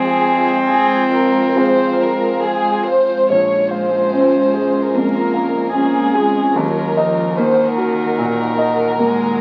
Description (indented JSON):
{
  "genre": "neoclassical piano and strings",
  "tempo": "67-75 BPM",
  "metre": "4/4",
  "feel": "rubato",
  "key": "Bb minor",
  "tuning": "A4 = 440 Hz",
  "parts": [
    { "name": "warm chamber violin section", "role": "melody", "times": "0.0-9.4 s", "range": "Ab4 to Db5", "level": "-20 LUFS", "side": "equal", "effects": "none" },
    { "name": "clear cello", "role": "second line", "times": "0.0-9.4 s", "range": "Eb3 to C4", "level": "-24 LUFS", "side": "equal", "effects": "none" },
    { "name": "clear grand piano", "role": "accompaniment", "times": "0.0-9.4 s", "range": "Bb1 to F5", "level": "-21 LUFS", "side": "equal", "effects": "none" },
    { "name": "ethereal airy pad", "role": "sustained chords", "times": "0.0-9.4 s", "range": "Eb3 to Gb5", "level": "-26 LUFS", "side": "equal", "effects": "ensemble chorus, built-in reverb" }
  ],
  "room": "moderate club reverb, RT60 0.6 s",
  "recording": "very old 78 rpm record, vinyl crackle",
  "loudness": "-16 LUFS",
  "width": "mono",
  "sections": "0.0-3.3 A section; 3.3-9.4 B section",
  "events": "none",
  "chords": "0.0 Fm; 3.3 Bbm7; 6.6 Ebm",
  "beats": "0.66 1.54 2.42 | 3.29 4.13 4.95 5.75 | 6.57 7.38 8.19 9.00"
}